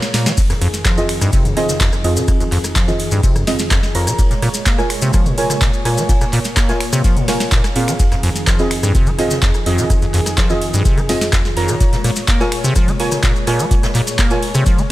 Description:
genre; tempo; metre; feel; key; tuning
acid house; 126 BPM; 4/4; straight; F minor; A4 = 444 Hz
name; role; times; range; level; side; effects
warm analog pad; sustained chords; 0.0-14.9 s; F2 to Db5; -24 LUFS; equal; chorus, sidechain pumping
booming analog drum machine; drums; 0.0-14.9 s; crash cymbal, finger snaps, handclaps, hi-hat, ride cymbal, rim click, snare drum, toms; -22 LUFS; equal; none
vintage brush drum kit; drums; 0.0-14.9 s; hi-hat, ride cymbal, snare drum; -31 LUFS; equal; sidechain pumping on cymbals, high-pass filter on cymbals, sidechain pumping on hats, high-pass filter on hats, high-pass filter on snare, high-pass filter on room
maracas; percussion; 0.0-14.9 s; none; -26 LUFS; left 2 dB; none
acid bass, square; riff; 0.1-14.8 s; F2 to Bb3; -20 LUFS; equal; sidechain pumping, tape echo
electronic kick drum; drums; 0.4-14.8 s; none; -16 LUFS; equal; none
deep mellow chord stab; stabs; 1.0-14.4 s; C4 to Bb5; -22 LUFS; right 1 dB; chorus, cassette tape, tape echo
room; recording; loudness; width
light reverb, studio reverb; none; -13 LUFS; side -16 dB against mid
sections
0.0-14.9 A section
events
break 0.0-0.4; drum fill 0.0-0.4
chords
0.4 Fm7; 4.2 Bbm7; 8.0 Fm7; 11.8 Bbm7

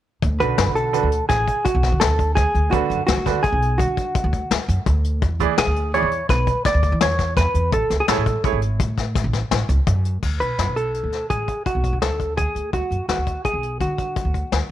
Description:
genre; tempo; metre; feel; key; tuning
progressive instrumental, band music in an uneven meter; 168 BPM; 7/4; straight; D lydian; A4 = 440 Hz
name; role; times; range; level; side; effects
upright bass; bass; 0.2-14.6 s; G#1 to E3; -22 LUFS; equal; none
vintage brush drum kit; drums; 0.2-14.6 s; crash cymbal, hi-hat, kick drum, snare drum; -23 LUFS; left 4 dB; none
hollow-body jazz guitar; melody; 0.4-14.7 s; F#4 to D5; -22 LUFS; right 1 dB; none
bright baby grand piano; accompaniment; 0.4-8.6 s; D3 to D5; -23 LUFS; right 13 dB; none
room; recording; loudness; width
small room ambience; 1960s-style stereo; -18 LUFS; side -12 dB against mid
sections
0.2-10.2 A section; 10.2-14.7 B section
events
none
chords
0.2 D6; 5.2 E7; 7.7 Amaj7; 10.2 D6

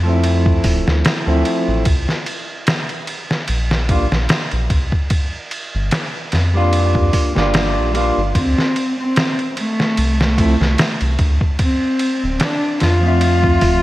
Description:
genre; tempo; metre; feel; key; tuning
trip hop; 74 BPM; 4/4; swing 55% on 16ths; D minor; A4 = 442 Hz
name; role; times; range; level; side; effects
mellow electric guitar; accompaniment; 0.0-13.8 s; F3 to E5; -20 LUFS; equal; harmonic tremolo, low-pass filter, tape echo
round analog bass; bass; 0.0-13.8 s; D1 to F2; -17 LUFS; equal; tube saturation
trip hop sampler-style drum kit; drums; 0.2-13.8 s; hi-hat, kick drum, ride cymbal, snare drum; -18 LUFS; equal; none
warm cello; melody; 8.4-13.8 s; A3 to F4; -18 LUFS; equal; tape echo
room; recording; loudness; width
moderate plate reverb, RT60 2.7 s; bright 1980s-style digital production, vinyl crackle; -14 LUFS; side -16 dB against mid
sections
0.0-13.8 A section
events
none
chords
0.0 Dm7; 1.9 C9sus4 (rootless); 8.4 Dm7

